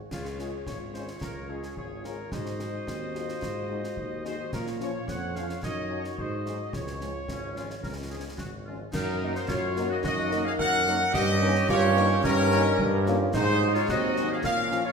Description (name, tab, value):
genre	military-style march for wind band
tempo	109 BPM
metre	2/4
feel	straight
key	Db major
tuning	A4 = 439 Hz
part	clear tuba	bass	0.0-14.9 s	Ab1 to Bb2	-30 LUFS	right 1 dB	none
part	clear trumpet section	melody	0.1-14.9 s	F4 to Gb5	-32 LUFS	equal	none
part	clear woodwind section	second line	0.1-14.9 s	Db4 to Eb5	-34 LUFS	left 1 dB	none
part	mellow euphonium	second line	0.1-14.9 s	C4 to Ab4	-34 LUFS	right 3 dB	none
part	concert snare drum, clash cymbals and concert bass drum	drums	0.1-14.8 s	none	-38 LUFS	left 1 dB	none
part	mellow French horn section	accompaniment	0.4-14.8 s	F3 to Gb4	-37 LUFS	left 4 dB	none
part	small flute group	second line	8.9-14.9 s	Bb4 to Gb5	-31 LUFS	left 3 dB	none
part	warm trombone section	sustained chords	8.9-14.9 s	Eb3 to Eb4	-33 LUFS	right 4 dB	none
room	wet recital hall reverb, RT60 1.5 s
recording	recorded in a church or concert hall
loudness	-25 LUFS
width	side -5 dB against mid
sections	0.1-8.9 A section; 8.9-14.9 B section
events	none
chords	0.1 Db; 2.3 Ab7; 4.5 Bbm; 5.6 Ebm7/Gb; 6.2 Ab7; 6.7 Db; 8.9 Ebm/Gb; 11.1 Eb7/G; 13.3 Ab7